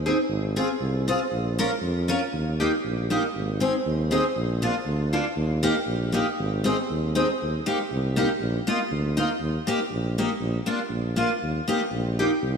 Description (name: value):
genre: alpine folk, alpine dance band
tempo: 119 BPM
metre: 2/4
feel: straight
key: Ab major, Eb major from 7.4 s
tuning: A4 = 440 Hz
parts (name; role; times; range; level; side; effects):
- mellow tuba; bass; 0.0-12.6 s; Ab1 to F2; -27 LUFS; right 1 dB; none
- picked steel-string acoustic guitar; accompaniment; 0.1-12.3 s; Bb3 to Bb4; -24 LUFS; equal; analog chorus
room: wet lush hall reverb, RT60 3.2 s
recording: dreamy mix soaked in reverb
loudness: -23 LUFS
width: side -6 dB against mid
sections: 0.0-7.4 A section; 7.4-12.6 B section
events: none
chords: 0.3 Fm/Ab; 1.3 Bbm; 2.3 Eb; 3.4 Ab; 4.4 Bb; 5.4 Eb; 6.4 Ab; 7.4 Eb; 8.4 Bbsus4; 9.4 Eb; 10.4 Bb; 11.4 Eb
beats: | 0.30 0.81 | 1.32 1.83 | 2.33 2.85 | 3.36 3.87 | 4.37 4.88 | 5.38 5.88 | 6.39 6.90 | 7.41 7.91 | 8.41 8.91 | 9.42 9.92 | 10.42 10.93 | 11.44 11.94 | 12.44